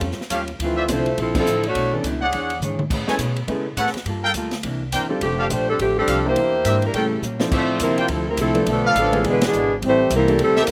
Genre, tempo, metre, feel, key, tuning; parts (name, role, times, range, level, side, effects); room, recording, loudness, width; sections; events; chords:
jazz, big band swing; 208 BPM; 4/4; swing 60% on 8ths; D minor from 7.5 s; A4 = 436 Hz
vintage hollow-body jazz guitar; accompaniment; 0.0-10.7 s; A2 to C#5; -32 LUFS; equal; slapback echo
upright bass; bass; 0.0-10.7 s; E1 to C#3; -29 LUFS; equal
swinging big-band drum kit; drums; 0.0-10.7 s; crash cymbal, hi-hat, kick drum, ride cymbal, snare drum, toms; -31 LUFS; equal
warm trumpet section; stabs; 0.3-10.6 s; F4 to G#5; -24 LUFS; equal
warm saxophone section; melody; 0.6-1.9, 5.2-10.7 s; D3 to Db5; -22 LUFS; equal
clear upright piano; accompaniment; 0.9-10.7 s; E3 to Bb4; -27 LUFS; equal
warm trombone section; second line; 7.0-10.7 s; B2 to C4; -26 LUFS; equal
little or no reverb; recorded outdoors, with no room sound; -21 LUFS; mono
0.0-7.5 A section; 7.5-10.7 B section
band accent 1.3, 9.4; drum fill 2.6, 7.2
0.0 A7b13; 0.6 Dm9; 1.7 Bm11; 2.3 E13; 2.9 Amaj9; 4.1 Gm9; 4.6 C9; 5.2 F69; 6.4 Em7b5; 6.9 A7b9; 7.5 Dm9; 8.7 Bm7b5; 9.2 E7; 9.8 Am7